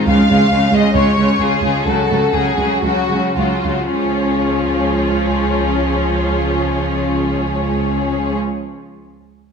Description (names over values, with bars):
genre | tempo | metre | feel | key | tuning
classical, dramatic, fast romantic movement for symphony orchestra | 106-141 BPM | 4/4 | rubato | Db major | A4 = 440 Hz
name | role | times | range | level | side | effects
warm symphonic violin section | melody | 0.0-8.4 s | Db4 to F5 | -19 LUFS | left 3 dB | none
rich symphonic violin section | second line | 0.0-8.4 s | Db4 to Db5 | -22 LUFS | left 3 dB | none
clear symphonic viola section | accompaniment | 0.0-8.4 s | Db3 to F4 | -19 LUFS | right 1 dB | none
rich studio cello section | bass | 0.1-8.4 s | Db2 | -20 LUFS | right 4 dB | none
room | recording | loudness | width
wet recital hall reverb, RT60 1.7 s | recorded in a church or concert hall | -14 LUFS | side -6 dB against mid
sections
0.0-3.9 A section; 3.9-8.1 B section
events
slowing down 0.0-3.9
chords
0.1 Db; 1.9 Gbm/Db; 3.9 Db